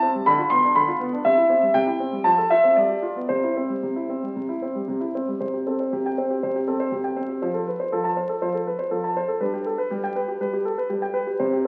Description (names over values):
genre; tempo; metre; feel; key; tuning
classical-period piano sonatina; 112-124 BPM; 4/4; rubato; C major; A4 = 444 Hz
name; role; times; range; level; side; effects
warm baby grand piano; solo; 0.0-11.7 s; C3 to C6; -23 LUFS; equal; none
room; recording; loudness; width
wet recital hall reverb, RT60 1.7 s; very old 78 rpm record, vinyl crackle; -23 LUFS; mono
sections
0.0-5.4 A section; 5.4-11.7 B section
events
none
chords
0.3 Dm6; 1.3 C; 2.3 F; 2.8 G7; 3.3 C; 5.4 C5; 7.4 F; 9.4 G